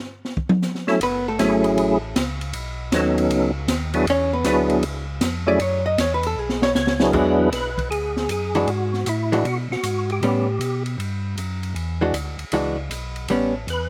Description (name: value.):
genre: soul jazz organ trio.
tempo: 156 BPM.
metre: 4/4.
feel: swing 66% on 8ths.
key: E mixolydian.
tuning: A4 = 440 Hz.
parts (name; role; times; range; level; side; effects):
open jazz drum kit; drums; 0.2-13.8 s; crash cymbal, hi-hat, kick drum, ride cymbal, snare drum, toms; -29 LUFS; equal; none.
percussive tonewheel organ; melody; 0.9-10.8, 13.7-13.9 s; F#3 to C#5; -23 LUFS; equal; slow rotary speaker, chorus vibrato, slapback echo.
vintage hollow-body jazz guitar; accompaniment; 1.0-1.6, 4.1-13.5 s; E3 to D#5; -24 LUFS; equal; none.
tonewheel organ; bass; 1.0-13.9 s; F#1 to B2; -29 LUFS; equal; overdrive, stopped rotary speaker.
room: little or no reverb.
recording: recorded outdoors, with no room sound.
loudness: -22 LUFS.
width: mono.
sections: 0.0-7.1 A section; 7.1-13.9 B section.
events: hollow-body jazz guitar solo 0.0-7.1; drum solo 0.0-1.0; drum fill 6.4-7.1.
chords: 0.2 F#m7; 2.5 B9; 4.1 E9; 4.8 C#; 5.6 C#m11; 6.4 Bsus2; 7.1 E9; 10.2 A9; 11.8 E9; 13.3 A9.